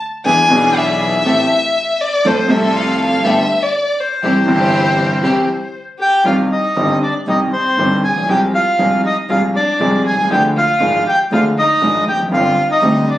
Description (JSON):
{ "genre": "tango", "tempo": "119 BPM", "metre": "4/4", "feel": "rubato", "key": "C major, C minor from 6.3 s", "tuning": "A4 = 440 Hz", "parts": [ { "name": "warm violin", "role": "second line", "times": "0.3-13.2 s", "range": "C4 to G#5", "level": "-18 LUFS", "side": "left 2 dB", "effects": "none" }, { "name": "clear concert grand piano", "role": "accompaniment", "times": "0.3-13.0 s", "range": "G1 to A4", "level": "-17 LUFS", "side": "equal", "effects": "none" }, { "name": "clear symphonic string section", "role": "stabs", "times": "0.3-5.4 s", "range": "B3 to A4", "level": "-20 LUFS", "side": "equal", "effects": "none" }, { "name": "clear double bass", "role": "bass", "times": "0.3-13.0 s", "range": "F1 to F2", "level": "-23 LUFS", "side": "equal", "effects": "none" }, { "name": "bandoneon", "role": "melody", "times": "6.0-13.2 s", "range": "C5 to Ab5", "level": "-15 LUFS", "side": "equal", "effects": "plate reverb" } ], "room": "moderate club reverb, RT60 0.6 s", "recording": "recorded on a phone in the room, studio reverb", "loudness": "-12 LUFS", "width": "side -14 dB against mid", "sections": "0.0-6.3 A section; 6.3-13.2 B section", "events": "violin solo 0.0-6.3", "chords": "0.3 E7; 1.2 Am7; 2.2 F; 3.2 Gadd9; 4.2 C; 6.3 Cm; 8.3 Fm/C; 10.3 Ddim; 12.3 Gsus4" }